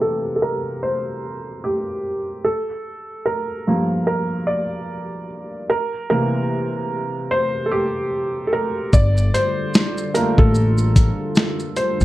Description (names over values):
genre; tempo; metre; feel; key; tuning
lo-fi hip hop; 74 BPM; 4/4; swing 58% on 16ths; G dorian; A4 = 440 Hz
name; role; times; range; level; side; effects
felt-muted upright piano; accompaniment; 0.0-12.0 s; G2 to D5; -21 LUFS; right 1 dB; cassette tape, low-pass filter
hollow soft pad; sustained chords; 9.3-12.0 s; D3 to A4; -27 LUFS; equal; chorus, low-pass filter
upright bass; bass; 8.9-12.0 s; G1 to C#2; -17 LUFS; equal; none
dusty soul sampler-style drum kit; drums; 8.9-12.0 s; hi-hat, kick drum, shaker, snare drum; -16 LUFS; equal; none
room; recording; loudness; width
moderate studio reverb, RT60 0.6 s; dark, warm production; -18 LUFS; side -16 dB against mid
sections
0.0-8.9 A section; 8.9-12.0 B section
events
felt piano solo 0.0-8.9, 8.9-12.0; filter sweep on felt piano 0.0-8.9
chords
0.0 C7; 2.4 Gm9; 5.7 C7; 8.9 Gm9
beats
0.01 0.82 1.64 | 2.45 3.26 4.07 4.88 | 5.69 6.50 7.31 8.12 | 8.93 9.74 10.55 11.36